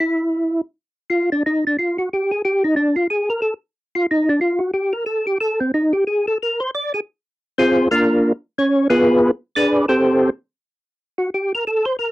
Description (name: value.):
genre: jazz.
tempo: 182 BPM.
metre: 4/4.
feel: swing 63% on 8ths.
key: unclear.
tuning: A4 = 439 Hz.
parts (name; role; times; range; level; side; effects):
percussive tonewheel organ; solo; 0.0-12.1 s; Bb3 to D5; -16 LUFS; equal; slow rotary speaker, chorus vibrato, cassette tape.
room: light reverb.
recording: home recording on cassette.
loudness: -17 LUFS.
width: side -17 dB against mid.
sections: 0.8-12.1 A section.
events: tonewheel organ solo 0.8-12.1.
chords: 0.0 N.C.; 6.0 Bb9; 8.7 Bdim7; 10.0 Am7/C; 11.3 N.C..